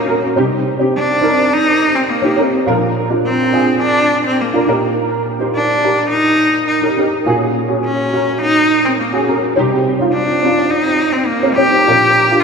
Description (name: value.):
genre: pop.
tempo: 104 BPM.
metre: 4/4.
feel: straight.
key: unclear.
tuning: A4 = 440 Hz.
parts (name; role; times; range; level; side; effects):
clear cello; melody; 0.0-12.4 s; Bb3 to G4; -14 LUFS; equal; none.
dark upright piano; accompaniment; 0.0-12.4 s; Bb2 to C5; -15 LUFS; right 1 dB; ensemble chorus.
room: wet lush hall reverb, RT60 2.9 s.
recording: dreamy mix soaked in reverb.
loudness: -12 LUFS.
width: side -5 dB against mid.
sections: 0.0-12.4 A section.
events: none.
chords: 0.4 Cm; 2.7 Bb; 4.7 Eb/Bb; 7.3 Gbsus2/Bb; 9.6 Cm; 11.9 Bb.